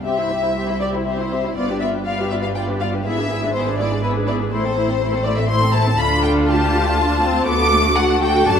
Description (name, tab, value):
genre	quick classical-period movement for string orchestra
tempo	121 BPM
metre	3/4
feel	rubato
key	C major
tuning	A4 = 440 Hz
part	warm studio violin section	melody	0.0-8.6 s	F4 to E5	-26 LUFS	left 7 dB	none
part	rich studio violin section	second line	0.0-8.6 s	B4 to D6	-21 LUFS	left 2 dB	none
part	rich studio viola section	accompaniment	0.0-8.6 s	A3 to G#4	-22 LUFS	equal	none
part	rich studio double bass section	bass	0.0-8.6 s	F#1 to D2	-24 LUFS	right 2 dB	none
part	rich studio cello section	bass	0.1-8.6 s	C2 to A2	-27 LUFS	right 3 dB	none
room	wet concert hall reverb, RT60 2.1 s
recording	none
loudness	-16 LUFS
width	side -7 dB against mid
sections	0.1-8.6 A section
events	none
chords	0.1 C; 1.6 G7; 3.1 E7/G#; 4.5 Am; 6.0 Dm; 7.5 D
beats	| 0.05 0.56 1.07 | 1.57 2.06 2.56 | 3.05 3.54 4.03 | 4.52 5.01 5.49 | 5.98 6.47 6.98 | 7.47 7.97 8.47